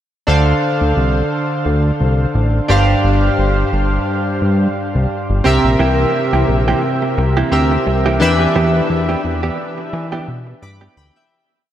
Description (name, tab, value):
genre	pop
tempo	87 BPM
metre	4/4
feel	swing 55% on 16ths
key	unclear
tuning	A4 = 441 Hz
part	chorused retro synth keys	accompaniment	0.3-11.5 s	G2 to D6	-16 LUFS	equal	none
part	fat analog bass	bass	0.3-11.1 s	G1 to E3	-16 LUFS	equal	none
part	direct-recorded clean electric guitar	riff	5.8-11.2 s	E3 to G4	-21 LUFS	right 3 dB	lush chorus, analog delay
room	wet huge ambient reverb, RT60 8.0 s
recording	dreamy mix soaked in reverb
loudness	-13 LUFS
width	side -11 dB against mid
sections	0.3-11.3 verse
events	fade-out 8.6-11.3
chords	0.3 Dm7; 2.7 G7sus4; 5.5 C7; 8.2 Em7